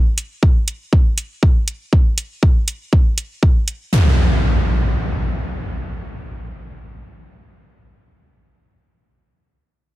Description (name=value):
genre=melodic techno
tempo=120 BPM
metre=4/4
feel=straight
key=none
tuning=none
part: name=electronic hi-hat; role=drums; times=0.2-3.8 s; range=none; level=-22 LUFS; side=right 1 dB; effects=sidechain pumping on hats
part: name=electronic kick drum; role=drums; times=0.4-3.5 s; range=none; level=-13 LUFS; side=equal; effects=none
part: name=impact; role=sound effects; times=3.9-8.4 s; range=none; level=-17 LUFS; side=equal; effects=none
room=light reverb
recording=heavily compressed radio sound, multiband compression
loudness=-15 LUFS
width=side -17 dB against mid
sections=0.0-3.9 A section; 3.9-7.9 B section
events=none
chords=none